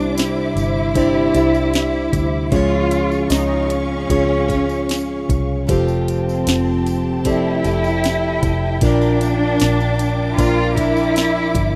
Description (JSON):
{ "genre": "pop ballad", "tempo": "77 BPM", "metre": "4/4", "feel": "straight", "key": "unclear", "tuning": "A4 = 440 Hz", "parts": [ { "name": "warm studio cello section", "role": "second line", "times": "0.0-11.8 s", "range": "C4 to F4", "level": "-24 LUFS", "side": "equal", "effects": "delay" }, { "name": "mellow tine electric piano", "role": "accompaniment", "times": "0.0-11.8 s", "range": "Bb2 to D5", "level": "-23 LUFS", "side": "equal", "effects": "none" }, { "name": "warm studio string section", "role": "sustained chords", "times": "0.0-11.8 s", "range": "G4 to D6", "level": "-32 LUFS", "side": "equal", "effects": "none" }, { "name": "picked plugged-in steel-string acoustic guitar", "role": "arpeggios", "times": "0.0-11.8 s", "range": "F2 to D5", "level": "-27 LUFS", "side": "equal", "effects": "none" }, { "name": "vintage muted fingered electric bass", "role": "bass", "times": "0.0-11.8 s", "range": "F1 to D2", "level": "-25 LUFS", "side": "equal", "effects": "none" }, { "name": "tambourine", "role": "percussion", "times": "0.0-11.7 s", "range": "none", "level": "-40 LUFS", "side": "equal", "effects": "none" }, { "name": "smooth R&B drum kit", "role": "drums", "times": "0.2-11.7 s", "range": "hi-hat, kick drum, snare drum", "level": "-23 LUFS", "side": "equal", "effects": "none" } ], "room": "light reverb", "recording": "rough home demo mix", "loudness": "-18 LUFS", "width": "mono", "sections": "0.0-11.8 A section", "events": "none", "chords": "0.0 Cadd9; 2.5 Db; 5.7 Fadd9; 8.8 Bb", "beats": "0.17 0.95 1.73 | 2.52 3.30 4.09 4.89 | 5.69 6.47 7.26 8.04 | 8.82 9.61 10.38 11.16" }